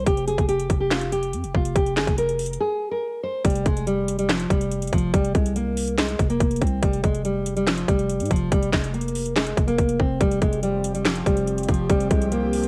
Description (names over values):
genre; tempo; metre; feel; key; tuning
hip hop, trap; 142 BPM; 4/4; half-time; F minor; A4 = 444 Hz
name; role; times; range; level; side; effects
nylon-string guitar; melody; 0.0-12.7 s; F3 to C5; -27 LUFS; equal; low-pass filter, cassette tape, tape echo
growling 808-style bass; bass; 0.0-12.7 s; F1 to Ab2; -29 LUFS; equal; none
trap drum kit; drums; 0.1-12.7 s; handclaps, hi-hat, kick drum, snare drum; -25 LUFS; equal; overdrive
airy breathy pad; sustained chords; 10.2-12.7 s; F3 to G4; -33 LUFS; equal; chorus, cassette tape
room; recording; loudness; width
digital ambience; home recording on cassette; -23 LUFS; mono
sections
0.0-3.4 A section; 3.4-12.7 B section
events
break 2.6-3.4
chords
0.1 Fsus2